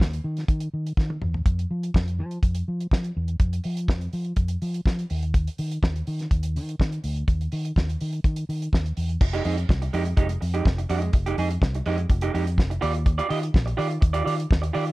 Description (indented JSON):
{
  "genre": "disco",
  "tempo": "124 BPM",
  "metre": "4/4",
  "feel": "straight",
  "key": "F dorian",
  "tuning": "A4 = 440 Hz",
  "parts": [
    { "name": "fingered electric bass", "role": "bass", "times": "0.0-14.9 s", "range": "F1 to F3", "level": "-26 LUFS", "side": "equal", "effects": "none" },
    { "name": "damped 70s drum kit", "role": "drums", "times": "0.0-14.9 s", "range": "crash cymbal, hi-hat, kick drum, snare drum, toms", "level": "-23 LUFS", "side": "equal", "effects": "none" },
    { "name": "electric guitar through a small old amp", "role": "accompaniment", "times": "9.2-14.9 s", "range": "Ab3 to Eb5", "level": "-28 LUFS", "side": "right 5 dB", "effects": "none" }
  ],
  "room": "little or no reverb",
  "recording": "dark, warm production",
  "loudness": "-22 LUFS",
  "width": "side -20 dB against mid",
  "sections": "0.0-9.2 A section; 9.2-14.9 B section",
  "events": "drum fill 1.0-1.5",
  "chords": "0.0 N.C.; 9.2 Fm9; 12.8 Ebmaj9"
}